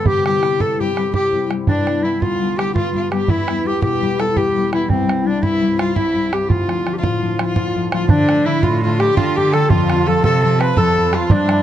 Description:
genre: celtic folk, Celtic slip jig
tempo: 112 BPM (dotted quarters)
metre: 9/8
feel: straight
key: D dorian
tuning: A4 = 440 Hz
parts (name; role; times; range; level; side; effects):
- warm clarinet; melody; 0.0-11.6 s; C4 to B4; -19 LUFS; right 3 dB; plate reverb
- dark fiddle; second line; 0.0-11.6 s; C4 to B4; -24 LUFS; left 5 dB; none
- concert harp; accompaniment; 0.0-11.6 s; C2 to E4; -21 LUFS; left 6 dB; none
- bodhran; percussion; 0.1-11.6 s; none; -19 LUFS; right 2 dB; none
- hammered dulcimer; second line; 7.9-11.6 s; D4 to B4; -24 LUFS; right 4 dB; none
- rich cello; bass; 8.1-11.6 s; F2 to D3; -19 LUFS; equal; none
room: light reverb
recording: dark, warm production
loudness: -15 LUFS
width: side -11 dB against mid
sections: 0.0-8.1 A section; 8.1-11.6 A section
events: none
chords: 0.1 C; 1.7 G; 3.3 Em; 4.9 C; 6.5 Dm; 8.1 D5; 9.7 F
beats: | 0.07 0.60 1.14 | 1.68 2.22 2.75 | 3.29 3.83 4.36 | 4.90 5.43 5.97 | 6.50 7.04 7.57 | 8.10 8.64 9.17 | 9.71 10.24 10.78 | 11.31

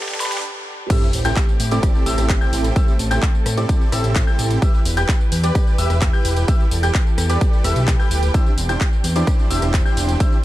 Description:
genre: EDM, festival progressive house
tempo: 129 BPM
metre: 4/4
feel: straight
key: unclear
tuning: A4 = 444 Hz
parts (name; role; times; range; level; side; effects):
- rich studio string section; sustained chords; 0.0-10.4 s; G2 to B4; -30 LUFS; right 1 dB; sidechain pumping
- clear baby grand piano; arpeggios; 0.0-10.4 s; A5 to G6; -29 LUFS; left 4 dB; sidechain pumping, ping-pong delay
- dense compressed supersaw; riff; 0.0-10.4 s; C4 to G5; -25 LUFS; right 2 dB; sidechain pumping, ping-pong delay
- big-room dance drum kit; drums; 0.0-10.4 s; crash cymbal, handclaps, hi-hat, rim click, snare drum, tambourine; -27 LUFS; left 1 dB; overdrive, high-pass filter on snare, high-pass filter on hats, high-pass filter on perc, high-pass filter on cymbals
- riser and sub drop; sound effects; 0.0-2.8 s; none; -30 LUFS; equal; none
- electronic kick drum; drums; 0.9-10.3 s; none; -17 LUFS; equal; overdrive
- fat analog bass; bass; 1.1-10.2 s; D1 to A2; -19 LUFS; equal; sidechain pumping
room: small room ambience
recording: dark, warm production, high-pass filter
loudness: -15 LUFS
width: side -15 dB against mid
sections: 0.9-10.4 A section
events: drum fill 0.0-0.4; riser 0.0-0.4; break 0.4-0.9; drop 0.9-10.4; impact 0.9-2.8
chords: 0.0 G; 0.9 Am7; 4.6 Em; 8.3 Cadd9/E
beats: 0.44 | 0.90 1.37 1.83 2.30 | 2.76 3.23 3.69 4.16 | 4.62 5.09 5.55 6.02 | 6.48 6.95 7.41 7.88 | 8.34 8.81 9.27 9.74 | 10.20

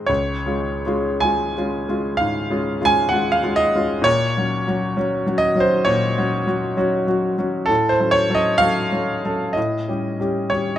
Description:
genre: classical, romantic nocturne for solo piano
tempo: 50-67 BPM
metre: 4/4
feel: rubato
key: Db major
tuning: A4 = 441 Hz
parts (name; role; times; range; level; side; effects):
- clear grand piano; solo; 0.0-10.8 s; Db2 to Ab5; -17 LUFS; equal; none
room: light reverb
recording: none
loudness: -17 LUFS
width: side -11 dB against mid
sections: 0.1-10.8 A section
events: none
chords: 0.1 Db; 4.1 Gb/Bb; 7.7 Gbm/A; 9.6 A7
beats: | 0.09 1.22 2.19 3.12 | 4.06 4.97 5.87 6.78 | 7.70 8.62 9.57 10.54

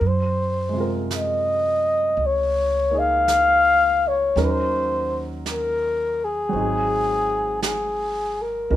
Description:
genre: jazz ballad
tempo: 55 BPM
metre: 4/4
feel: swing 68% on 8ths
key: unclear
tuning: A4 = 441 Hz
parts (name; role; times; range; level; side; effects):
- breathy flugelhorn; melody; 0.0-8.8 s; G4 to F5; -20 LUFS; left 2 dB; none
- warm grand piano; accompaniment; 0.0-8.8 s; C3 to Bb4; -29 LUFS; right 1 dB; none
- upright bass; bass; 0.0-8.8 s; Ab1 to Gb2; -28 LUFS; right 2 dB; none
- jazz brush drum kit; drums; 0.0-8.8 s; brushed snare drum, hi-hat, snare drum; -32 LUFS; right 5 dB; none
room: light reverb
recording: minimal, uncompressed stereo recording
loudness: -19 LUFS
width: side -13 dB against mid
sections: 0.0-8.8 A section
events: none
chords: 0.0 Gbmaj9#11; 4.4 Ebm7; 6.5 Ab7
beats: | 0.01 1.10 2.19 3.27 | 4.36 5.44 6.53 7.62 | 8.71

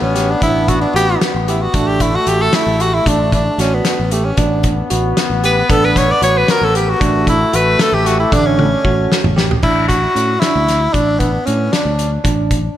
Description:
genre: progressive instrumental, band music in an uneven meter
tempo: 228 BPM (eighths)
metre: 5/8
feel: straight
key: A mixolydian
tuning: A4 = 440 Hz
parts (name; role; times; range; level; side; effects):
- warm tenor saxophone; melody; 0.0-12.1 s; A3 to D5; -16 LUFS; equal; slapback echo, tape echo
- breathy flugelhorn; second line; 0.0-9.3 s; A3 to B3; -22 LUFS; left 4 dB; slapback echo, tape echo
- fingered electric bass; bass; 0.0-12.7 s; A1 to A2; -18 LUFS; equal; none
- bell-like tine electric piano; arpeggios; 0.1-12.6 s; D3 to G4; -21 LUFS; right 5 dB; slapback echo
- loose indie drum kit; drums; 0.2-12.6 s; crash cymbal, hi-hat, kick drum, snare drum, toms; -18 LUFS; left 1 dB; none
room: moderate lush hall reverb, RT60 2.4 s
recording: big arena sound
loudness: -12 LUFS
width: side -12 dB against mid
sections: 0.0-9.6 A section; 9.6-12.8 B section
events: tenor saxophone solo 0.0-9.6; drum fill 8.6-9.6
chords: 0.0 A7sus4; 9.6 Asus4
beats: 0.16 | 0.42 0.69 0.95 1.21 1.48 | 1.74 2.01 2.27 2.53 2.80 | 3.06 3.33 3.59 3.85 4.12 | 4.38 4.64 4.91 5.17 5.43 | 5.69 5.96 6.22 6.48 6.75 | 7.01 7.27 7.53 7.79 8.06 | 8.32 8.58 8.84 9.11 9.37 | 9.63 9.89 10.15 10.42 10.68 | 10.94 11.20 11.46 11.73 11.99 | 12.25 12.51

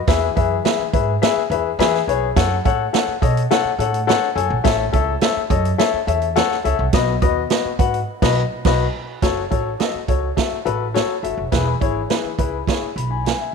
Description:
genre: uptempo 1960s-style soul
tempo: 105 BPM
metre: 4/4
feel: straight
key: E major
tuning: A4 = 439 Hz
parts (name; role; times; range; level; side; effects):
- dark upright piano; accompaniment; 0.1-13.5 s; A2 to B5; -20 LUFS; left 11 dB; none
- upright bass; bass; 0.1-13.3 s; E1 to E3; -23 LUFS; right 2 dB; none
- swinging big-band drum kit; drums; 0.1-13.4 s; crash cymbal, hi-hat, kick drum, snare drum; -21 LUFS; right 6 dB; none
room: light reverb, small room ambience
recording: 1960s-style stereo with parts hard left and right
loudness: -17 LUFS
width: side -5 dB against mid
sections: 0.0-9.2 A section; 9.2-13.5 B section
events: band accent 8.1-9.2; upright piano fill 12.7-13.5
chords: 0.1 E; 2.4 F#m; 4.6 A; 6.9 B; 9.2 F#m; 11.5 E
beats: | 0.08 0.65 1.22 1.79 | 2.36 2.94 3.51 4.08 | 4.65 5.22 5.79 6.36 | 6.93 7.51 8.08 8.65 | 9.22 9.80 10.37 10.95 | 11.52 12.10 12.67 13.25

